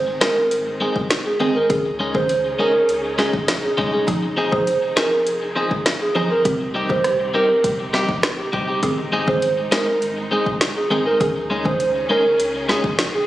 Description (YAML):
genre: dancehall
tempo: 101 BPM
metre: 4/4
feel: straight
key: unclear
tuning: A4 = 439 Hz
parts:
  - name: warm studio string section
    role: sustained chords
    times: 0.0-13.3 s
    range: C3 to Ab4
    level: -29 LUFS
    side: equal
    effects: sidechain pumping
  - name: warm sub bass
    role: bass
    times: 0.0-13.2 s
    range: F1 to Db2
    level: -35 LUFS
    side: equal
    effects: none
  - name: hollow clarinet-like synth lead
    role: melody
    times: 0.2-13.3 s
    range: G4 to C5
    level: -20 LUFS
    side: right 2 dB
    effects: chorus, ping-pong delay
  - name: clean electric guitar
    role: arpeggios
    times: 0.2-12.8 s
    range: F3 to Ab4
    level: -24 LUFS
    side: left 2 dB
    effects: ping-pong delay
  - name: afro-pop drum kit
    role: drums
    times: 0.2-13.1 s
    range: hi-hat, kick drum, rim click, snare drum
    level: -22 LUFS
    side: equal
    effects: vintage 12-bit sampler grit
  - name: mallet-like synth pluck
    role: accompaniment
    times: 1.4-11.8 s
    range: Eb3 to Ab4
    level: -24 LUFS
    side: right 1 dB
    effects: chorus, phaser
room: moderate lush hall reverb, RT60 2.5 s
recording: recorded on a phone in the room, studio reverb, compression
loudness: -17 LUFS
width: side -14 dB against mid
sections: 0.0-13.3 A section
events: none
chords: 0.0 Ab; 1.7 Dbsus2; 4.1 Fm7; 6.5 Cm; 8.8 Ab; 11.2 Dbsus2